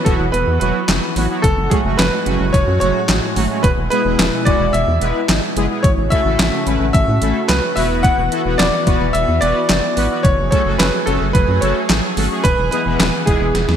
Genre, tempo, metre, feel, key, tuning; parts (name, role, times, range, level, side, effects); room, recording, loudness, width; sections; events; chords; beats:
synth-pop; 109 BPM; 4/4; straight; A4 = 438 Hz
clear baby grand piano; melody; 0.0-13.8 s; G#4 to F#5; -19 LUFS; equal; ping-pong delay
lush unison pad; sustained chords; 0.0-13.8 s; A2 to G#4; -23 LUFS; equal; chorus, phaser
analog synth brass; accompaniment; 0.1-13.5 s; F#3 to B4; -22 LUFS; equal; chorus
rubbery square bass; bass; 0.1-13.8 s; E1 to A2; -20 LUFS; equal
detuned 8-bit digital drum machine; drums; 0.1-13.8 s; handclaps, hi-hat, kick drum, snare drum; -18 LUFS; equal; overdrive, gated reverb
moderate lush hall reverb, RT60 1.9 s, digital ambience; bright 1980s-style digital production; -14 LUFS; side -9 dB against mid
0.0-13.8 A section
drum fill 13.5
0.0 Esus2; 1.4 F#madd9; 3.6 E; 5.8 A6; 7.8 Esus2; 10.2 F#madd9; 12.4 E
0.34 0.89 | 1.44 1.99 2.54 3.09 | 3.64 4.19 4.74 5.29 | 5.84 6.39 6.94 7.49 | 8.04 8.60 9.14 9.70 | 10.25 10.80 11.35 11.90 | 12.45 13.00 13.55